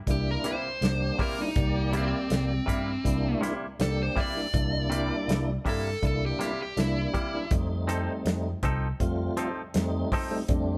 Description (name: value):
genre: straight-eighth soul blues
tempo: 81 BPM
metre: 4/4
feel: straight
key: C mixolydian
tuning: A4 = 443 Hz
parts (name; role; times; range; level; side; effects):
- dark smooth lead guitar; melody; 0.1-7.5 s; C4 to D5; -34 LUFS; equal; overdrive
- tonewheel organ; accompaniment; 0.1-10.8 s; G3 to D5; -34 LUFS; equal; overdrive, chorus vibrato, slow rotary speaker
- fingered electric bass; bass; 0.1-10.8 s; C2 to G2; -33 LUFS; equal; none
- damped 70s drum kit; drums; 0.1-10.7 s; hi-hat, kick drum, snare drum; -32 LUFS; equal; none
- direct-recorded clean electric guitar; stabs; 0.4-10.4 s; C3 to A4; -36 LUFS; equal; none
room: moderate large studio reverb, RT60 1.4 s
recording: band playing live in one room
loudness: -28 LUFS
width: mono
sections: 0.0-10.8 A section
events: none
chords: 0.0 C7; 7.5 F7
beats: 0.07 0.82 | 1.56 2.31 3.05 3.80 | 4.54 5.29 6.03 6.77 | 7.52 8.26 9.01 9.75 | 10.50